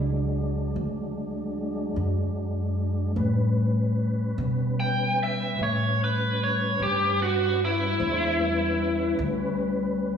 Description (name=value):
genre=slow blues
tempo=50 BPM (dotted quarters)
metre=12/8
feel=straight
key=unclear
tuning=A4 = 442 Hz
part: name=mellow tonewheel organ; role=sustained chords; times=0.0-10.2 s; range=F#3 to C5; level=-30 LUFS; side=left 2 dB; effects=slow rotary speaker, chorus vibrato
part: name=upright bass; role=bass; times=0.0-10.2 s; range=C#2 to B2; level=-27 LUFS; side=equal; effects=none
part: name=biting overdriven guitar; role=melody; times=4.8-9.2 s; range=E4 to G5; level=-25 LUFS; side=right 1 dB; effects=none
room=wet scoring stage reverb, RT60 2.0 s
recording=recorded in a church or concert hall, studio reverb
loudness=-23 LUFS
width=side -7 dB against mid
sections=0.0-10.2 A section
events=none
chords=0.0 E9 (rootless); 3.2 A9